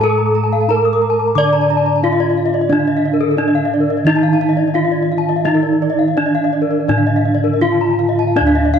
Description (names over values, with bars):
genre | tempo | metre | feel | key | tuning
Balinese gamelan | 80-90 BPM | 4/4 | straight | D pelog | A4 = 440 Hz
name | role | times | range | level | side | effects
gamelan-type bronze metallophone | melody | 0.0-8.8 s | D4 to D5 | -16 LUFS | equal | none
gamelan-type bronze metallophone | accompaniment | 0.0-8.4 s | D3 to D4 | -25 LUFS | right 10 dB | none
gamelan-type bronze metallophone | arpeggios | 0.0-8.8 s | A4-30c to Eb6+20c | -20 LUFS | left 9 dB | none
gamelan-type bossed gongs | bass | 0.0-8.8 s | D2 to A4-30c | -19 LUFS | equal | none
gamelan-type bronze metallophone | arpeggios | 0.1-8.7 s | Bb4-20c to D6 | -25 LUFS | right 8 dB | slapback echo
room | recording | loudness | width
moderate echo chamber reverb, RT60 2.1 s | 1960s-style stereo with parts hard left and right | -13 LUFS | side -7 dB against mid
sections
0.0-8.4 A section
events
none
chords
none